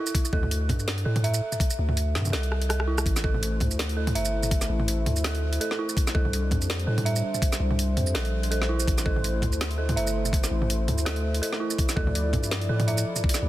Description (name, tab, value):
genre	half-time drum and bass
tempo	165 BPM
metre	4/4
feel	swing 54% on 16ths, half-time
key	A minor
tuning	A4 = 440 Hz
part	dark detuned synth bell	arpeggios	0.0-13.5 s	E4 to E5	-32 LUFS	right 3 dB	chorus, dub echo
part	drum and bass drum kit	drums	0.1-13.4 s	hi-hat, rim click, shaker, snare drum, toms	-29 LUFS	right 1 dB	overdrive, small room ambience
part	electronic kick drum	drums	0.1-13.3 s	none	-25 LUFS	equal	overdrive, small room ambience
part	long sustained 808-style bass	bass	0.3-13.5 s	G1 to A2	-26 LUFS	equal	none
part	dark analog pad	sustained chords	3.1-13.5 s	F3 to D5	-32 LUFS	left 1 dB	chorus, sidechain pumping
room	digital ambience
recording	dense, heavily limited modern master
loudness	-23 LUFS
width	side -15 dB against mid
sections	0.0-3.1 A section; 3.1-13.5 A section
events	drop 0.0-3.1, 3.1-13.5; drum fill 2.5-3.1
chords	0.1 Dsus2; 3.1 Am; 6.0 Csus2; 8.9 Am; 11.8 Dmadd9